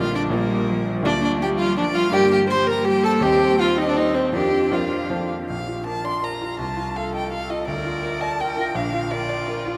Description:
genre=quick classical-period movement for piano quartet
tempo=166 BPM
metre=3/4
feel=rubato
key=Bb major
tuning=A4 = 438 Hz
part: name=warm violin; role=melody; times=0.0-9.7 s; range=Bb4 to C6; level=-29 LUFS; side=equal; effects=none
part: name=clear cello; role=second line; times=0.0-9.8 s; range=D3 to Bb4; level=-29 LUFS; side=equal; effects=none
part: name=bright concert grand piano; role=accompaniment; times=0.0-9.8 s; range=Bb1 to Eb5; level=-28 LUFS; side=equal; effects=none
part: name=rich viola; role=accompaniment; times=0.0-9.7 s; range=Bb3 to C5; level=-24 LUFS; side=equal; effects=none
room=wet cathedral reverb, RT60 5.2 s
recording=in a vast, echoing space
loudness=-22 LUFS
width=mono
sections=0.0-5.5 A section; 5.5-9.8 B section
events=none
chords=0.0 Bb; 1.1 Bb/D; 2.1 Gm; 3.2 Cm/Eb; 4.3 Bb/F; 5.1 F; 5.5 Bb; 6.6 F7/C; 7.7 Bb/D; 8.8 Bb

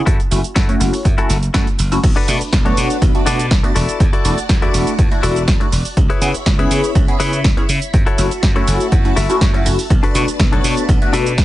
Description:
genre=filtered disco house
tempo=122 BPM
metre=4/4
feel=straight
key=F# minor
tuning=A4 = 440 Hz
part: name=funky polysynth comp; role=accompaniment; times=0.0-11.3 s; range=A3 to G#4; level=-21 LUFS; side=equal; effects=chorus, phaser, cassette tape, sidechain pumping, low-pass filter
part: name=direct-recorded clean electric guitar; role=riff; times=0.1-11.3 s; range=D4 to E5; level=-22 LUFS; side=left 5 dB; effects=sidechain pumping, low-pass filter
part: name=glassy slap bass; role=bass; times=0.1-11.4 s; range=E1 to C#3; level=-20 LUFS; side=equal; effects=sidechain pumping, low-pass filter
part: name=electronic kick drum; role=drums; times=0.1-11.4 s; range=none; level=-15 LUFS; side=equal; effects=none
part: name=punchy analog drum machine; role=drums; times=0.1-11.4 s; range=crash cymbal, hi-hat, shaker, snare drum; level=-22 LUFS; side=right 1 dB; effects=sidechain pumping on hats, sidechain pumping on perc, sidechain pumping on cymbals
part: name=phased string machine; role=sustained chords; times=2.0-11.4 s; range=D4 to B5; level=-26 LUFS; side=equal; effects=ensemble chorus, phaser, sidechain pumping, low-pass filter
room=little or no reverb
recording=nothing above 10.3 kHz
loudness=-13 LUFS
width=side -15 dB against mid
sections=0.0-2.0 A section; 2.0-11.4 B section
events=drop 2.0-11.4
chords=0.1 F#m7; 2.0 Bm7; 3.8 E9sus4; 6.0 C#m7; 7.9 F#m7; 9.9 Bm7

